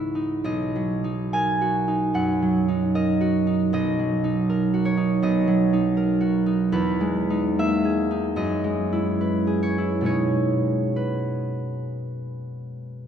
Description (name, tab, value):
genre	classical, solo harp piece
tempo	65-84 BPM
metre	4/4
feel	rubato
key	B major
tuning	A4 = 441 Hz
part	concert harp	solo	0.0-13.1 s	B1 to G#5	-21 LUFS	right 1 dB	none
room	wet church reverb, RT60 2.5 s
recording	heard from further back in the room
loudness	-20 LUFS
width	side -8 dB against mid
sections	0.0-13.1 A section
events	none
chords	0.4 Bmaj7; 6.7 Emaj7#11; 8.4 F#9sus4; 10.0 B69